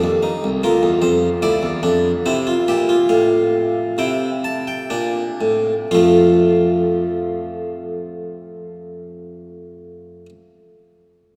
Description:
classical, baroque-style 3-part fugue for harpsichord; 59-77 BPM; 4/4; straight; F major; A4 = 440 Hz
harpsichord; solo; 0.0-10.3 s; C2 to A5; -18 LUFS; equal
wet cathedral reverb, RT60 5.4 s; in a vast, echoing space; -18 LUFS; mono
0.0-5.9 A section; 5.9-10.0 B section
slowing down 0.0-5.9
0.0 F7 (rootless); 0.6 Bb/D; 2.3 F; 4.0 C7; 5.9 F

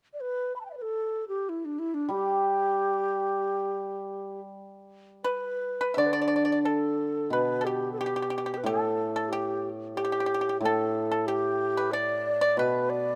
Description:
chinese traditional, Chinese chamber ensemble; 71-92 BPM; 4/4; rubato; G gong mode; A4 = 440 Hz
breathy mellow xiao; melody; 0.1-13.2 s; D4 to B5; -31 LUFS; equal
hammered dulcimer; accompaniment; 2.1-13.2 s; A2 to G3; -33 LUFS; equal
pipa; second line; 5.2-13.2 s; G4 to E5; -32 LUFS; equal
light reverb; close, detailed microphones; -28 LUFS; mono
0.0-6.0 A section; 6.0-13.2 B section

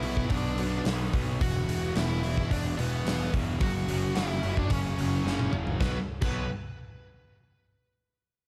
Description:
quiet-loud alternative rock; 109 BPM; 4/4; straight; B minor; A4 = 441 Hz
fuzz lead guitar; melody; 0.0-6.5 s; B3 to F#5; -37 LUFS; equal; distortion
picked swing-style acoustic guitar; arpeggios; 0.0-1.4 s; B2 to B3; -44 LUFS; equal
distorted electric guitar; riff; 0.0-6.5 s; E2 to B3; -39 LUFS; equal; distortion
thick fuzz guitar; riff; 0.0-6.4 s; E2 to B3; -38 LUFS; equal
fuzz picked electric bass; bass; 0.0-6.5 s; E1 to B1; -34 LUFS; equal; overdrive
big rock drum kit; drums; 0.0-6.3 s; crash cymbal, hi-hat, kick drum, snare drum, toms; -33 LUFS; equal
light reverb; -29 LUFS; mono
0.0-5.8 A section; 5.8-8.0 B section
drum fill 5.3-5.8
0.0 Bm; 1.4 E5; 3.6 F#5; 5.8 B5

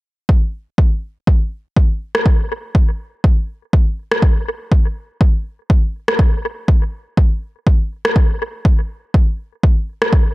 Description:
deep house; 122 BPM; 4/4; swing 56% on 16ths
electronic kick drum; drums; 0.3-10.2 s; -12 LUFS; equal
electronic rim click; drums; 2.1-10.1 s; -19 LUFS; equal; analog delay
little or no reverb; echo-heavy mix; -14 LUFS; side -20 dB against mid
0.3-10.3 A section

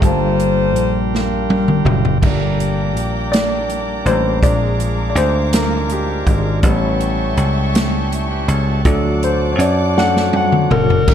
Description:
slow gospel; 54 BPM (dotted quarters); 6/8; straight; A4 = 435 Hz
mellow saxophone section; melody; 0.0-2.2 s; D4 to C5; -21 LUFS; left 1 dB
warm baby grand piano; accompaniment; 0.0-11.1 s; G2 to A5; -20 LUFS; left 2 dB
bright tonewheel organ; sustained chords; 0.0-11.0 s; F#3 to C#5; -25 LUFS; right 4 dB; overdrive, stopped rotary speaker
dry thumbed slap bass; bass; 0.0-11.1 s; F#1 to F#2; -18 LUFS; equal
swinging big-band drum kit; drums; 0.0-11.1 s; crash cymbal, hi-hat, kick drum, snare drum, toms; -18 LUFS; equal
warm studio string section; sustained chords; 2.2-11.1 s; D5 to D6; -29 LUFS; left 3 dB
breathy alto saxophone; melody; 10.7-11.1 s; Bb4; -16 LUFS; left 5 dB
light reverb; dark, warm production; -14 LUFS; side -9 dB against mid
0.0-2.2 A section; 2.2-11.1 B section
drum fill 1.1-2.2, 10.0-11.1; grand piano solo 2.2-11.1
0.0 Gm9; 2.2 Gm; 4.4 Bb7; 6.6 A7; 8.9 D

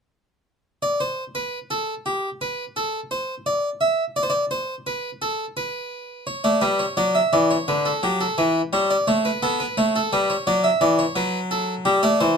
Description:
classical, baroque-style two-part invention for harpsichord; 86 BPM; 4/4; straight; A4 = 438 Hz
harpsichord; solo; 0.8-12.4 s; D3 to E5; -20 LUFS; equal
moderate small room reverb, RT60 0.5 s; minimal, uncompressed stereo recording; -20 LUFS; side -6 dB against mid
0.6-12.4 A section
0.6 N.C.; 6.3 D; 7.7 Em7/D; 9.1 A7; 10.5 D; 11.9 G5

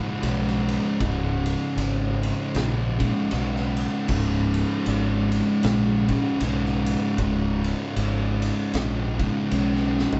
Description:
stoner and doom metal; 78 BPM; 4/4; swing 59% on 8ths; A4 = 440 Hz
thick fuzz guitar; riff; 0.0-10.2 s; C#2 to C#3; -26 LUFS; equal; distortion
fuzz picked electric bass; bass; 0.2-10.1 s; C#1 to B1; -29 LUFS; equal; overdrive
oversized low-tuned drum kit; drums; 0.2-10.2 s; crash cymbal, kick drum, ride cymbal, snare drum, toms; -34 LUFS; equal
wet small room ambience, RT60 0.5 s; band playing live in one room, nothing above 8.0 kHz; -24 LUFS; mono
0.0-10.2 A section
drum fill 9.9-10.2
0.0 C#5

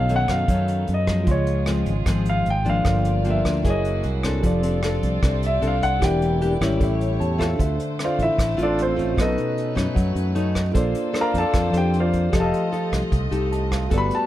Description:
bossa nova; 152 BPM; 4/4; straight; A4 = 440 Hz
warm concert grand piano; melody; 0.0-14.3 s; C4 to B5; -24 LUFS; equal
nylon-string guitar; accompaniment; 0.0-14.3 s; F#2 to C5; -25 LUFS; left 2 dB
tine electric piano; accompaniment; 0.0-14.3 s; D4 to C6; -31 LUFS; right 6 dB
warm chamber string section; sustained chords; 0.0-14.3 s; Ab3 to Eb5; -33 LUFS; left 2 dB
fingered electric bass; bass; 0.0-14.1 s; E1 to F#2; -23 LUFS; equal
vintage brush drum kit; drums; 0.1-14.2 s; hi-hat, kick drum, rim click; -25 LUFS; equal
light reverb; -19 LUFS; side -13 dB against mid
0.0-7.6 A section; 7.6-14.3 A section
grand piano solo 0.0-14.3; tine electric piano fill 7.0-7.6, 10.2-10.8, 13.3-13.9
0.0 B9; 1.3 Dbmaj7; 2.9 Gm7; 3.6 Gb9; 4.4 F6; 6.0 Em7b5; 6.8 A7; 7.6 Dm7; 9.2 B9; 10.8 Bbmaj9; 12.3 F9

